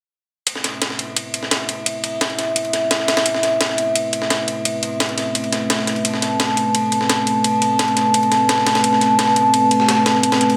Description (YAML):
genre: dark technical drum and bass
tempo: 172 BPM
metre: 4/4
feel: straight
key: A minor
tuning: A4 = 437 Hz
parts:
  - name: dark analog pad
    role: sustained chords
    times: 0.5-10.6 s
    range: A3 to A5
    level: -20 LUFS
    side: equal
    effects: chorus
  - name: breakbeat sampler-style drum kit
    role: drums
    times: 0.5-10.6 s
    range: ride cymbal, snare drum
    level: -24 LUFS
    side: equal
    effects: high-pass filter on cymbals, high-pass filter on snare, high-pass filter on room
  - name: electronic hi-hat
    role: drums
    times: 0.5-10.5 s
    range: none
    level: -23 LUFS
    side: equal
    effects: none
room: moderate lush hall reverb, RT60 2.0 s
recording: none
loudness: -18 LUFS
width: mono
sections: 0.5-10.6 A section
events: none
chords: 0.5 Amadd9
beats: | 0.47 0.82 1.16 1.51 | 1.86 2.21 2.56 2.91 | 3.26 3.61 3.96 4.30 | 4.65 5.00 5.35 5.70 | 6.05 6.40 6.75 7.09 | 7.44 7.79 8.14 8.49 | 8.84 9.19 9.54 9.88 | 10.23